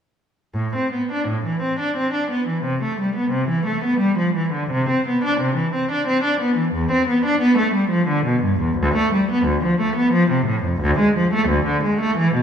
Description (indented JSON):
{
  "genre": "classical, baroque-style suite movement for unaccompanied cello",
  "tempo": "88 BPM",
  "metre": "3/4",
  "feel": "rubato",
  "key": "A minor",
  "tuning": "A4 = 440 Hz",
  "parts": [
    { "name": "rich cello", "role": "solo", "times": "0.5-12.4 s", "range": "D2 to D4", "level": "-17 LUFS", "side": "equal", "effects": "none" }
  ],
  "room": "moderate scoring stage reverb, RT60 1.9 s",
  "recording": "minimal, uncompressed stereo recording",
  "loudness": "-18 LUFS",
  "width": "side -8 dB against mid",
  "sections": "0.5-12.4 A section",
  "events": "none",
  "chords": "none"
}